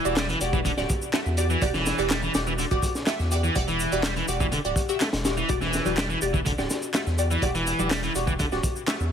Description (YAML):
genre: breakbeat, breaks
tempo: 124 BPM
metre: 4/4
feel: straight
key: unclear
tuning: A4 = 439 Hz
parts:
  - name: distorted electric guitar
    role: riff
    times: 0.0-8.9 s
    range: D3 to A3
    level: -28 LUFS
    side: equal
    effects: distortion, ping-pong delay
  - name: saturated sub bass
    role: bass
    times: 0.0-9.1 s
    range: D1 to E2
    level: -29 LUFS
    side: equal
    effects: none
  - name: filtered dub chord stab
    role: stabs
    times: 0.1-9.0 s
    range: F#4 to E5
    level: -29 LUFS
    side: equal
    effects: phaser, wide subtle chorus, ping-pong delay
  - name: electronic shaker and handclaps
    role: drums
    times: 0.1-9.1 s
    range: none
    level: -33 LUFS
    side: equal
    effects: overdrive
  - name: crunchy breakbeat drum kit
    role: drums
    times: 0.2-9.0 s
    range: hi-hat, kick drum, snare drum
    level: -28 LUFS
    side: equal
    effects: none
  - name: congas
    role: percussion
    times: 5.9-8.5 s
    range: none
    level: -34 LUFS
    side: right 2 dB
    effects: none
room: light reverb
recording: heavily compressed radio sound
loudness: -22 LUFS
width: side -8 dB against mid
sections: 0.0-9.1 A section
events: none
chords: 0.0 Em9